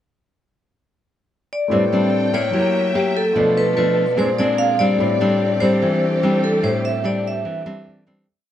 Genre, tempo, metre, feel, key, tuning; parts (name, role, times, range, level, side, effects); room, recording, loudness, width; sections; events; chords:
bossa nova; 146 BPM; 4/4; straight; A minor; A4 = 441 Hz
vibraphone with medium hard mallets; melody; 1.5-7.8 s; A4 to F5; -20 LUFS; left 2 dB
nylon-string guitar; accompaniment; 1.7-8.3 s; A2 to G4; -20 LUFS; equal
warm concert grand piano; accompaniment; 1.7-8.3 s; F#3 to B5; -27 LUFS; right 4 dB
warm studio string section; sustained chords; 1.7-8.2 s; A#3 to G5; -28 LUFS; right 2 dB
light reverb; dark, warm production; -16 LUFS; side -11 dB against mid
0.1-1.7 pickup bar; 1.7-8.3 A section
fade-out 6.6-8.3; grand piano fill 7.7-8.3
0.1 N.C.; 1.7 Am11; 2.5 F#7b9; 3.4 Bm7b5; 4.2 Bb9; 5.0 Am11